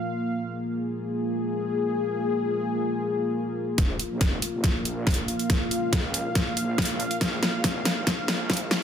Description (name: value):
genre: deep dubstep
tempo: 140 BPM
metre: 4/4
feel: half-time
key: Bb minor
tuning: A4 = 438 Hz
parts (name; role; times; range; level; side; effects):
- dark analog pad; sustained chords; 0.0-8.8 s; Bb3 to F5; -27 LUFS; left 1 dB; chorus
- wobble bass; bass; 3.8-8.8 s; F1 to Db2; -36 LUFS; equal; chorus, high-pass filter
- dubstep drum kit; drums; 3.8-8.8 s; hi-hat, snare drum; -26 LUFS; equal; overdrive
- electronic kick drum; drums; 3.8-8.6 s; none; -27 LUFS; equal; none
room: moderate echo chamber reverb, RT60 1.4 s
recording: dense, heavily limited modern master, high-pass filter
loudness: -24 LUFS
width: side -8 dB against mid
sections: 0.0-3.8 A section; 3.8-8.8 B section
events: build-up 3.8-8.8; drum fill 3.8-8.8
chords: 0.0 Bb5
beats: | 0.35 0.78 1.21 1.64 | 2.07 2.50 2.93 3.35 | 3.78 4.21 4.64 5.07 | 5.50 5.93 6.36 6.78 | 7.21 7.64 8.07 8.50